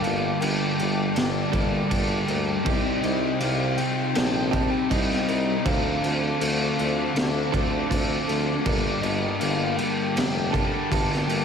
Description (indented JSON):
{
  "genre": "rock, shoegaze and dream pop",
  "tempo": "80 BPM",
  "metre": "4/4",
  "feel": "straight",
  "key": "G minor",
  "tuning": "A4 = 440 Hz",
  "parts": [
    { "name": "mellow horn-like synth lead", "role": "melody", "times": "0.0-11.4 s", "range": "D5 to A5", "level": "-33 LUFS", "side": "left 1 dB", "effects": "chorus, tremolo, ping-pong delay" },
    { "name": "dark analog pad", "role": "sustained chords", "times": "0.0-11.4 s", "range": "Eb4 to D6", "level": "-34 LUFS", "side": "equal", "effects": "chorus" },
    { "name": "fingerpicked twelve-string acoustic guitar", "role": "arpeggios", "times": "0.0-11.4 s", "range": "Bb3 to Bb4", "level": "-34 LUFS", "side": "left 8 dB", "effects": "lush chorus, ping-pong delay" },
    { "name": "direct-recorded clean electric guitar", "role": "riff", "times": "0.0-11.4 s", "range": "G2 to A4", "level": "-29 LUFS", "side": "right 10 dB", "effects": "reverse reverb" },
    { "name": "fuzz guitar", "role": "riff", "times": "0.0-11.4 s", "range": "G2 to D4", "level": "-28 LUFS", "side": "left 8 dB", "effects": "distortion, lush chorus" },
    { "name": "raw garage drum kit", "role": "drums", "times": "0.0-11.4 s", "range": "crash cymbal, kick drum, snare drum", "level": "-27 LUFS", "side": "equal", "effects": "none" },
    { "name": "warm tuba", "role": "bass", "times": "0.1-11.4 s", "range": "F1 to D2", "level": "-30 LUFS", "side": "equal", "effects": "none" }
  ],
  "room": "moderate plate reverb, RT60 2.3 s",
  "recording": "dreamy mix soaked in reverb",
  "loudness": "-22 LUFS",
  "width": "side -6 dB against mid",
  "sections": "0.0-11.4 A section",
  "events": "none",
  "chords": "0.0 Gmadd9; 2.7 Cm; 5.7 Dm7; 8.7 Gmadd9"
}